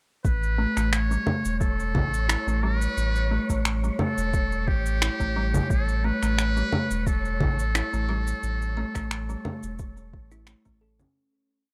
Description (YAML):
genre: organic downtempo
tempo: 88 BPM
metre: 4/4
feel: swing 54% on 16ths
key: A mixolydian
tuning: A4 = 436 Hz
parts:
  - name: trumpet with metal mute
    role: melody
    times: 0.2-10.5 s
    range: G4 to C#5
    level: -33 LUFS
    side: equal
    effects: tape echo
  - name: warm sub bass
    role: bass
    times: 0.2-11.1 s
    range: E1 to A1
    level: -29 LUFS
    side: equal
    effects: sidechain pumping
  - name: electronic kick drum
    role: drums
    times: 0.2-10.8 s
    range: none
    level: -29 LUFS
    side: equal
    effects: overdrive
  - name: electronic shaker, finger snaps and congas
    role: drums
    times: 0.2-11.1 s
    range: none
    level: -30 LUFS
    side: equal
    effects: overdrive
  - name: wind-like tuned noise texture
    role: texture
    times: 0.9-11.2 s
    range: C#5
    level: -42 LUFS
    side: equal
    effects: built-in reverb
  - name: kalimba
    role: arpeggios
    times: 0.6-11.1 s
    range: G3 to A4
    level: -34 LUFS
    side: equal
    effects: low-pass filter
room: little or no reverb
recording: dry, gritty hardware recording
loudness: -25 LUFS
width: mono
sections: 0.2-11.2 groove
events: filter sweep on kalimba 0.2-11.2; fade-out 7.5-11.2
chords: 0.2 Aadd9